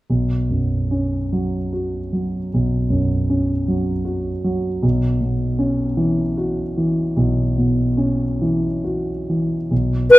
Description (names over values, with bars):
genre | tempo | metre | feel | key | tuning
classical, impressionist duo for flute and grand piano | 44-53 BPM (dotted quarters) | 12/8 | rubato | unclear | A4 = 439 Hz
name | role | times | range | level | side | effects
dark concert grand piano | accompaniment | 0.1-10.2 s | B1 to F#4 | -18 LUFS | equal | none
mellow hollow silver concert flute | melody | 10.1-10.2 s | B4 | -2 LUFS | left 1 dB | none
room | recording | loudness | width
moderate recital hall reverb, RT60 1.4 s | close, detailed microphones | -18 LUFS | side -16 dB against mid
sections
0.1-9.7 A section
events
none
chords
0.1 Bsus2; 4.8 C#m7/B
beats
| 0.10 1.33 2.53 3.67 | 4.83 5.99 7.17 8.41 | 9.71